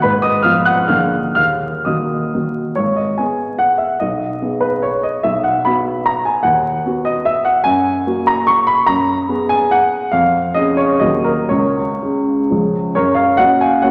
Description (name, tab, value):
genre	classical, romantic triple-time dance for piano with dotted rhythms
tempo	113-162 BPM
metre	3/4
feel	rubato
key	G# minor, F# major from 7.7 s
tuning	A4 = 440 Hz
part	dark baby grand piano	solo	0.0-13.9 s	G#1 to Gb6	-16 LUFS	equal	none
room	wet concert hall reverb, RT60 1.9 s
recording	vinyl crackle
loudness	-16 LUFS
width	mono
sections	0.0-2.8 A section; 2.8-13.0 B section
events	none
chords	0.0 Fdim/Ab; 0.9 Bb7; 1.4 Ebm; 2.8 G#m; 4.0 G#m/B; 5.2 B5; 6.5 B/D#; 7.7 F#; 8.9 G#m7/F#; 10.1 C#/E#; 11.0 D#m; 11.5 C#5; 12.5 C#; 13.0 F#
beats	| 0.04 0.45 0.90 | 1.36 1.86 2.34 | 2.78 3.20 3.61 | 4.01 4.43 4.85 | 5.25 5.67 6.08 | 6.45 6.86 7.27 | 7.66 8.07 8.49 | 8.89 9.30 9.73 | 10.13 10.56 11.02 | 11.50 12.02 12.51 | 12.96 13.39 13.83